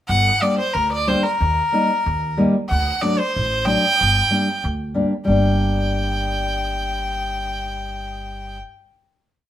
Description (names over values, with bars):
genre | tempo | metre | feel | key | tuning
klezmer | 93 BPM | 2/4 | straight | G harmonic minor | A4 = 440 Hz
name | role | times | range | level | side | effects
bright violin | melody | 0.1-8.6 s | Bb4 to G5 | -20 LUFS | equal | none
upright bass | bass | 0.1-8.6 s | G1 to Eb2 | -24 LUFS | equal | none
nylon-string guitar | accompaniment | 0.4-8.6 s | F#3 to Eb4 | -21 LUFS | left 1 dB | none
room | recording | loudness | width
moderate studio reverb, RT60 0.8 s | band playing live in one room | -17 LUFS | side -12 dB against mid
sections
0.1-5.3 A section; 5.3-7.8 final chord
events
none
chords
0.1 Gm; 1.4 Eb; 2.7 D; 4.0 Gm